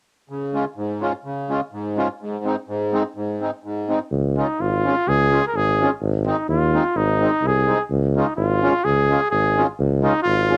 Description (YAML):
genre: alpine folk, alpine dance band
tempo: 127 BPM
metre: 2/4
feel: swing 53% on 8ths, rubato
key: Db major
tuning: A4 = 441 Hz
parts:
  - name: accordion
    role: accompaniment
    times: 0.3-10.6 s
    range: Ab2 to F4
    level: -25 LUFS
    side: equal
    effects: light tremolo tuning, cassette tape
  - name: clear tuba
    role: bass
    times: 4.1-10.6 s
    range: Ab1 to Eb2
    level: -23 LUFS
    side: equal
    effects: none
  - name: warm trumpet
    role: melody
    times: 4.4-10.6 s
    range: Eb4 to Bb4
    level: -22 LUFS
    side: equal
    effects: none
room: moderate studio reverb, RT60 0.6 s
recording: home recording on cassette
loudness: -21 LUFS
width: mono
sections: 0.3-4.1 A section; 4.1-10.6 B section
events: none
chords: 0.3 Db; 2.2 Ab; 4.1 Db; 6.0 Ab; 7.9 Db